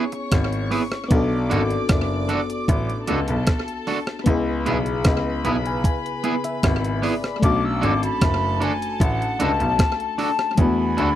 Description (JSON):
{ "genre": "lovers rock reggae", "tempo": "76 BPM", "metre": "4/4", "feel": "straight", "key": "B dorian", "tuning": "A4 = 440 Hz", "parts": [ { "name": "warm chamber string section", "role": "second line", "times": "0.0-11.2 s", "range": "G#4 to D6", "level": "-32 LUFS", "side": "left 1 dB", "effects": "none" }, { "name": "FM electric piano", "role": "accompaniment", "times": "0.0-11.2 s", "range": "C#3 to B5", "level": "-27 LUFS", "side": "left 3 dB", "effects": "chorus" }, { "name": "electric guitar at the edge of break-up", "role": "stabs", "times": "0.0-11.1 s", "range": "B3 to A4", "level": "-23 LUFS", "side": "right 4 dB", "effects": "none" }, { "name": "gated 80s digital drum machine", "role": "drums", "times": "0.1-11.2 s", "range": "hi-hat, kick drum, rim click", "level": "-21 LUFS", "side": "equal", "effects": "slapback echo" }, { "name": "clear concert grand piano", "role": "bass", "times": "0.3-11.2 s", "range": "F#1 to E2", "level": "-24 LUFS", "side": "left 1 dB", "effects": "none" }, { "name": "silver concert flute", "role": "melody", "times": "7.4-11.2 s", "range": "F#5 to E6", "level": "-24 LUFS", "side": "left 2 dB", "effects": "tape echo" } ], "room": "little or no reverb", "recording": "dry, close 1970s-style studio recording", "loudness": "-19 LUFS", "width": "side -12 dB against mid", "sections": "0.0-11.2 A section", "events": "FM electric piano fill 5.1-7.4", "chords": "0.0 C#m7; 1.1 Bm7; 4.3 C#m7; 7.4 Bm7; 10.6 E9sus4", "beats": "0.32 | 1.11 1.90 2.68 3.47 | 4.26 5.05 5.84 6.63 | 7.42 8.21 9.00 9.79 | 10.58" }